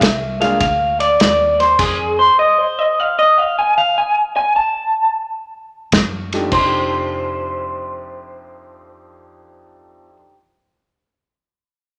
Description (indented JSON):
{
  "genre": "electric blues shuffle",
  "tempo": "101 BPM",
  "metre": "4/4",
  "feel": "swing 67% on 8ths",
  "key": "F mixolydian",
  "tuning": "A4 = 440 Hz",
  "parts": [
    { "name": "electric guitar through a small old amp", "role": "melody", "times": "0.0-10.2 s", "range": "Ab4 to A5", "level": "-17 LUFS", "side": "equal", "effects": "spring reverb" },
    { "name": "vintage muted fingered electric bass", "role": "bass", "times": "0.0-2.3, 5.9-10.2 s", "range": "F1 to Gb2", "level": "-31 LUFS", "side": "equal", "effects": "none" },
    { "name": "warm soul drum kit", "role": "drums", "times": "0.0-2.0, 5.9-6.7 s", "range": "crash cymbal, kick drum, ride cymbal, snare drum", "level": "-21 LUFS", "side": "equal", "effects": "none" },
    { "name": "warm upright piano", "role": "accompaniment", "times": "0.4-0.6, 6.3-10.3 s", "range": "F2 to Ab4", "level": "-27 LUFS", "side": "equal", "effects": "none" }
  ],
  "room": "moderate large studio reverb, RT60 1.2 s",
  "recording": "none",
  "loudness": "-16 LUFS",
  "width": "mono",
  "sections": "0.0-6.5 A section; 6.5-8.9 B section",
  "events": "none",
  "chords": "0.0 Bb7 (rootless); 1.8 N.C.; 5.9 F13b9/Gb; 6.5 F13"
}